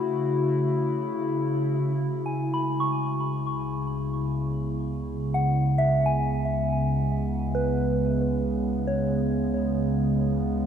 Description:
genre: ambient.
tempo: free time.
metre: none.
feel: none.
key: C# minor.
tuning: A4 = 439 Hz.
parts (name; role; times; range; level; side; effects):
warbly tape-like pad; sustained chords; 0.0-10.7 s; C#3 to F#4; -24 LUFS; equal; chorus, built-in reverb.
round analog bass; bass; 1.8-10.7 s; C#2; -34 LUFS; equal; none.
soft synth bell; arpeggios; 2.3-10.7 s; B4 to C#6; -29 LUFS; right 1 dB; chorus, phaser, ping-pong delay.
room: wet cathedral reverb, RT60 6.5 s.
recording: in a vast, echoing space.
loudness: -23 LUFS.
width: side -8 dB against mid.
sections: 0.0-1.8 A section; 1.8-10.7 B section.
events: fade-in on analog synth bass 1.8-10.7; filter sweep on ambient pad 1.8-10.7.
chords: 0.0 F#m7/C#; 1.8 C#m7.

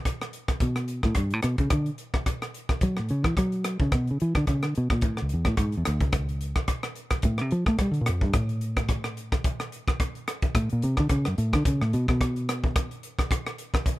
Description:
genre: electric jazz fusion.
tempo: 109 BPM.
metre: 4/4.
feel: swing 56% on 16ths.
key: unclear.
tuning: A4 = 444 Hz.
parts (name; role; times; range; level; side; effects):
crisp fusion drum kit; drums; 0.1-14.0 s; hi-hat, kick drum, rim click; -27 LUFS; equal; none.
fingered electric bass; bass; 0.6-12.9 s; C#2 to A3; -25 LUFS; equal; none.
room: little or no reverb.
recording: none.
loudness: -24 LUFS.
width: side -17 dB against mid.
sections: 0.0-14.0 A section.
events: fingered electric bass solo 0.0-14.0.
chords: none.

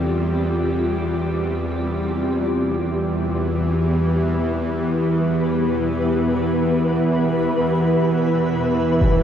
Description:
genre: dark ambient drone.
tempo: free time.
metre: none.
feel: none.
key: E minor.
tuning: A4 = 439 Hz.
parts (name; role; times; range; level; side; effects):
granular cloud pad; sustained chords; 0.0-9.2 s; B3 to E5; -22 LUFS; left 1 dB; built-in reverb.
gamelan-type bronze metallophone; arpeggios; 0.0-4.2 s; none; barely audible; none; none.
bowed-like drone; drone; 0.0-9.2 s; E2 to G3; -21 LUFS; right 1 dB; built-in reverb.
flickering grainy texture; texture; 0.0-9.2 s; B4 to E5; -26 LUFS; left 2 dB; built-in reverb.
impact; percussion; 9.0-9.2 s; none; -17 LUFS; equal; low-pass filter on sfx.
room: wet huge ambient reverb, RT60 8.2 s.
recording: none.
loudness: -18 LUFS.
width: side -9 dB against mid.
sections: 0.0-2.5 A section; 2.5-9.2 B section.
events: none.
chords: 0.0 Dm7/E; 2.5 Em.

